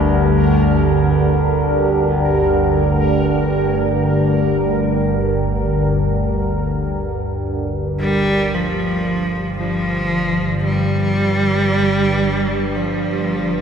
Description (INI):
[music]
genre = dark ambient drone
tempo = free time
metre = none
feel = none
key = G minor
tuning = A4 = 439 Hz
[part]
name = deep dark ambient pad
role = sustained chords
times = 0.0-13.6 s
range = G4 to G5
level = -26 LUFS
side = right 2 dB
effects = chorus, built-in reverb
[part]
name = bright concert grand piano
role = arpeggios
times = 0.0-13.6 s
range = C2 to Bb4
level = -32 LUFS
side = left 1 dB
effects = diffuse ambient delay
[part]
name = organ-like drone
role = drone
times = 0.0-13.6 s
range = G1 to D2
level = -17 LUFS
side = equal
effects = ensemble chorus, built-in reverb
[part]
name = bubbling stepped-filter texture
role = texture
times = 0.0-8.5 s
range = Bb4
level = -27 LUFS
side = right 1 dB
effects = chorus, built-in reverb
[part]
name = rich cello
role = melody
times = 8.0-13.6 s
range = F3 to G3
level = -18 LUFS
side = right 1 dB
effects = diffuse ambient delay
[sound]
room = wet cathedral reverb, RT60 5.7 s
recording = none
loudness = -15 LUFS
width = side -7 dB against mid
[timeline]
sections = 0.0-8.5 A section; 8.5-13.6 B section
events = fade-in on synth texture 0.0-8.5; fade-out on ambient pad 0.0-8.5; fade-out on grand piano 0.0-8.5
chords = 0.0 Gm; 8.5 G5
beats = free time